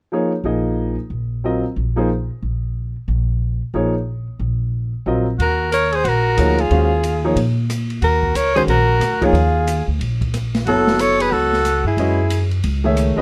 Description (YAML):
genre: modal jazz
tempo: 182 BPM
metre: 4/4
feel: swing 62% on 8ths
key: unclear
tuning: A4 = 440 Hz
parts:
  - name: clear baby grand piano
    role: accompaniment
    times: 0.1-13.2 s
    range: Eb3 to F5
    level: -22 LUFS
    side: equal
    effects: none
  - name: upright bass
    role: bass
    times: 0.4-13.2 s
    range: Gb1 to Bb2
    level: -22 LUFS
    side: equal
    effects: none
  - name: clear soprano saxophone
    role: melody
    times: 5.4-12.5 s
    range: Ab4 to Db5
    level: -21 LUFS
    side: equal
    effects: none
  - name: breathy alto saxophone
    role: second line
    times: 5.4-12.5 s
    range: Fb4 to Bb4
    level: -25 LUFS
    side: equal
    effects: none
  - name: open jazz drum kit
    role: drums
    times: 5.4-13.1 s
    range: hi-hat, kick drum, ride cymbal, rim click, snare drum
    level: -31 LUFS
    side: equal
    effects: none
room: light reverb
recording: none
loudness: -19 LUFS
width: mono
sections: 0.1-5.4 A section; 5.4-13.2 B section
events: none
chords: 0.1 Ebsus4; 5.4 Ebm11; 10.7 Gbm11